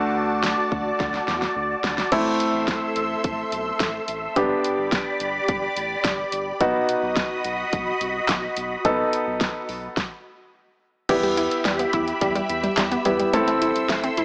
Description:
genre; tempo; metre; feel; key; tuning
synth-pop; 107 BPM; 4/4; straight; E minor; A4 = 440 Hz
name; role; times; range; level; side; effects
clear concert grand piano; accompaniment; 0.0-14.2 s; A3 to A4; -27 LUFS; equal; none
soft string machine; sustained chords; 0.0-14.2 s; F#4 to E6; -29 LUFS; equal; phaser, ensemble chorus
round analog bass; bass; 0.0-14.2 s; G1 to E2; -38 LUFS; equal; transformer saturation
pop drum kit; drums; 0.4-14.2 s; crash cymbal, handclaps, hi-hat, kick drum, snare drum; -28 LUFS; equal; none
unison pluck; arpeggios; 11.1-14.2 s; G3 to E4; -28 LUFS; equal; analog delay
room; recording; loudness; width
light reverb; dry, gritty hardware recording, small speaker sound; -23 LUFS; mono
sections
0.0-2.1 A section; 2.1-11.1 B section; 11.1-14.2 C section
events
drum fill 1.0-2.1; stop 10.0-11.1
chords
0.0 D; 2.1 Am; 4.4 G; 6.6 B; 11.1 Em; 13.3 Am

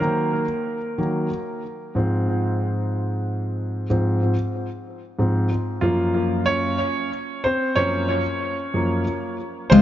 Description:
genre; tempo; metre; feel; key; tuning
six-eight pop ballad; 62 BPM (dotted quarters); 6/8; straight; unclear; A4 = 440 Hz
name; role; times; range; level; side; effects
clear concert grand piano; accompaniment; 0.0-9.8 s; Gb2 to Db5; -21 LUFS; equal; tape echo
picked steel-string acoustic guitar; arpeggios; 9.7-9.8 s; Ab3 to F4; -14 LUFS; left 8 dB; none
upright bass; bass; 9.7-9.8 s; Db2; -9 LUFS; equal; none
room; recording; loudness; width
light reverb, studio reverb; echo-heavy mix, nothing above 7.5 kHz; -21 LUFS; side -12 dB against mid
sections
0.0-9.7 A section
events
grand piano solo 0.0-9.7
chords
0.0 Ebm; 2.0 Ab6; 5.8 Gbmaj7

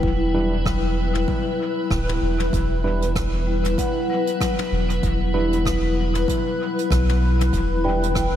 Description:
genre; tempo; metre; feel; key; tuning
ambient dub; 96 BPM; 4/4; swing 57% on 16ths; E minor; A4 = 440 Hz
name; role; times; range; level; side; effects
granular cloud pad; sustained chords; 0.0-8.4 s; E4 to B4; -25 LUFS; equal; built-in reverb
vibraphone with medium mallets; arpeggios; 0.0-8.4 s; F#3 to G5; -27 LUFS; left 4 dB; dub echo
soft dub sub bass; bass; 0.0-8.4 s; D1 to B1; -22 LUFS; equal; none
electronic kick drum; drums; 0.0-8.3 s; none; -26 LUFS; equal; none
tine electric piano; stabs; 0.3-8.1 s; G3 to B4; -31 LUFS; right 3 dB; none
jazz brush drum kit; drums; 0.7-8.3 s; hi-hat, rim click, toms; -32 LUFS; equal; dub echo
room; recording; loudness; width
moderate lush hall reverb, RT60 3.0 s; dreamy mix soaked in reverb; -19 LUFS; side -11 dB against mid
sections
0.0-8.4 A section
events
none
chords
0.0 Em7

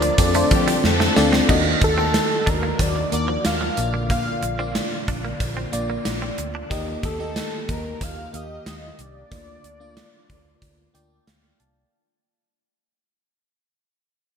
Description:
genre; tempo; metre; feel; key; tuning
1980s-style pop; 92 BPM; 4/4; straight; Bb major; A4 = 439 Hz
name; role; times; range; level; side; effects
wide unison lead; melody; 0.0-11.3 s; A4 to F5; -26 LUFS; equal; digital delay
FM electric piano; accompaniment; 0.0-11.9 s; Bb2 to A5; -25 LUFS; left 2 dB; chorus, phaser
string machine, violas; sustained chords; 0.0-11.9 s; D3 to G4; -32 LUFS; equal; ensemble chorus
direct-recorded clean electric guitar; riff; 0.0-6.7 s; F3 to Eb4; -31 LUFS; right 4 dB; lush chorus, digital delay
vintage muted fingered electric bass; bass; 0.0-11.8 s; Bb1 to F3; -27 LUFS; equal; none
gated 80s drum kit; drums; 0.0-11.8 s; crash cymbal, hi-hat, kick drum, snare drum; -23 LUFS; right 1 dB; gated reverb
warm studio violin section; second line; 0.5-1.4 s; G4 to A4; -28 LUFS; left 1 dB; digital delay
room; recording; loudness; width
wet lush hall reverb, RT60 2.6 s; bright 1980s-style digital production; -19 LUFS; side -7 dB against mid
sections
0.0-1.5 A section; 1.5-11.9 B section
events
drum fill 0.8-1.5; fade-out 1.5-11.9; FM electric piano fill 10.6-11.9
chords
0.2 F6; 1.5 Ebm; 3.8 Bb; 6.7 Eb; 9.3 Bb/D

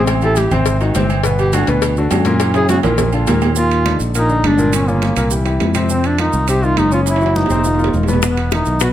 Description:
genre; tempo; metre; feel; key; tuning
Afro-Cuban jazz; 206 BPM; 4/4; straight; unclear; A4 = 439 Hz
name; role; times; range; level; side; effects
warm duduk; melody; 0.0-8.9 s; Bb3 to A4; -18 LUFS; equal; none
warm grand piano; accompaniment; 0.0-8.9 s; A#2 to Db5; -19 LUFS; left 2 dB; none
modern bright fingered electric bass; bass; 0.0-8.9 s; E1 to F#2; -17 LUFS; right 1 dB; none
agogo bells and timbales; percussion; 0.1-8.9 s; none; -23 LUFS; right 8 dB; none
congas; percussion; 0.1-8.9 s; none; -24 LUFS; left 3 dB; none
cowbell and bongos; percussion; 0.1-3.4, 8.2-8.9 s; none; -23 LUFS; left 10 dB; none
maracas; percussion; 0.1-8.9 s; none; -28 LUFS; right 9 dB; none
room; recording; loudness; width
light reverb; close, detailed microphones; -13 LUFS; side -12 dB against mid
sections
0.0-3.6 A section; 3.6-8.9 B section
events
duduk solo 0.0-3.6; drum fill 2.4-3.6, 7.1-8.2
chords
0.1 Am7; 0.7 G#7; 1.2 Gmaj7; 2.4 F#7; 3.0 A#; 3.6 Ebmaj9; 4.7 Gm7b5; 5.3 C; 5.9 F5; 7.1 Gb5; 7.6 Badd11; 8.2 E5

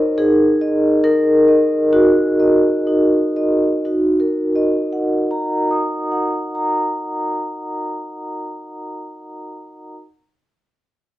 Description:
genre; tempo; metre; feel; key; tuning
classical, contemporary piece for solo vibraphone; 60-70 BPM; 4/4; straight; Eb minor; A4 = 438 Hz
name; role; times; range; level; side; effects
vibraphone with soft mallets; solo; 0.0-10.0 s; Eb4 to Eb6; -15 LUFS; equal; none
room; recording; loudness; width
light reverb; dark, warm production; -15 LUFS; side -15 dB against mid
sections
0.0-3.9 A section; 3.9-7.7 B section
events
slowing down 0.0-3.9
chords
0.2 Ebmadd11; 3.9 Ebm

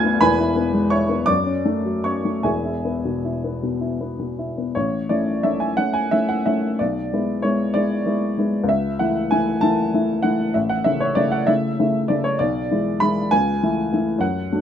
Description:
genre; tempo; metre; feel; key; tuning
classical, romantic character piece for solo piano; 50-68 BPM (dotted quarters); 6/8; rubato; A major; A4 = 440 Hz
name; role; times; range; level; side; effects
warm upright piano; solo; 0.0-14.6 s; E1 to A6; -18 LUFS; left 1 dB; none
room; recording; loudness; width
light reverb; close, detailed microphones, faint mains hum; -18 LUFS; side -9 dB against mid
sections
0.0-4.7 A section; 4.7-14.6 B section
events
none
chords
0.2 E; 1.3 F#m; 2.4 E; 4.7 A; 6.8 E7/B; 8.7 A/C#; 10.5 A; 12.4 E7/B; 13.3 A/C#

